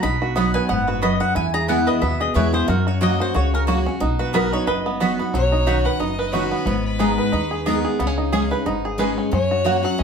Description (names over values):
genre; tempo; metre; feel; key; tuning
bluegrass; 181 BPM; 4/4; swing 56% on 8ths; B major; A4 = 440 Hz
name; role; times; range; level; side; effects
mandolin; melody; 0.0-5.2 s; A#4 to B5; -24 LUFS; left 2 dB; slapback echo
picked steel-string acoustic guitar; accompaniment; 0.0-10.0 s; E2 to A#4; -22 LUFS; left 1 dB; none
bluegrass banjo; arpeggios; 0.0-10.0 s; F#3 to B4; -25 LUFS; right 3 dB; none
upright bass; bass; 0.0-10.0 s; F#1 to F#2; -24 LUFS; equal; none
mandolin; stabs; 0.4-9.8 s; A#3 to C#6; -26 LUFS; right 4 dB; none
clear fiddle; second line; 5.3-10.0 s; B4 to F#5; -24 LUFS; left 3 dB; none
room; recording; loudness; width
wet studio reverb, RT60 0.5 s; heard from further back in the room; -18 LUFS; side -6 dB against mid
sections
0.0-5.3 A section; 5.3-10.0 B section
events
fiddle solo 5.3-10.0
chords
0.0 B; 1.4 E; 2.7 F#; 4.0 B; 5.3 Badd9; 6.7 G#madd9; 8.0 C#sus2; 9.3 F#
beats
| 0.03 0.36 0.69 1.02 | 1.35 1.69 2.02 2.35 | 2.68 3.01 3.35 3.68 | 4.01 4.34 4.67 5.00 | 5.34 5.67 6.00 6.33 | 6.67 7.00 7.33 7.66 | 7.99 8.33 8.66 8.99 | 9.32 9.66 9.99